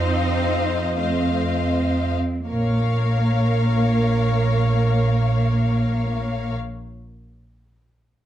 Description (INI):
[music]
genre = classical, slow romantic movement for string orchestra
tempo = 38-47 BPM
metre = 4/4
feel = rubato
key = Bb minor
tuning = A4 = 438 Hz
[part]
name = rich symphonic violin section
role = melody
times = 0.0-6.5 s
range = F5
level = -30 LUFS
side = left 8 dB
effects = none
[part]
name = clear symphonic violin section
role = second line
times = 0.0-6.5 s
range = C5 to Eb5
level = -29 LUFS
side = left 3 dB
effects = none
[part]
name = clear symphonic viola section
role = accompaniment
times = 0.0-6.5 s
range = A3 to Bb4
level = -29 LUFS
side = right 2 dB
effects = none
[part]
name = clear studio double bass section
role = bass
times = 0.0-6.5 s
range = Bb1 to F2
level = -21 LUFS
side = right 1 dB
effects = none
[part]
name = rich symphonic cello section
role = bass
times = 0.0-6.5 s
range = Bb3 to Eb4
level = -26 LUFS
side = right 1 dB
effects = none
[sound]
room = light reverb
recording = dark, warm production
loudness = -18 LUFS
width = side -11 dB against mid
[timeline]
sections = 0.0-2.5 A section; 2.5-8.1 B section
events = slowing down 0.0-2.5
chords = 0.0 F7; 2.5 Bbm